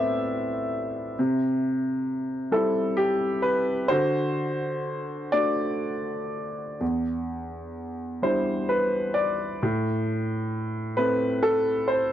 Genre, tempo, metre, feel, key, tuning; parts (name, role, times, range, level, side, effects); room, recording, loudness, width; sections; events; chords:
classical, lyrical solo piano; 43 BPM (dotted quarters); 6/8; uneven beats, rubato; A4 = 442 Hz
warm concert grand piano; solo; 0.0-12.1 s; E2 to E5; -24 LUFS; equal
light reverb; dry, gritty hardware recording, transformer saturation; -24 LUFS; side -11 dB against mid
0.0-12.1 A section
0.0 Amadd9; 1.2 C; 3.9 D; 6.8 Em7; 9.6 Am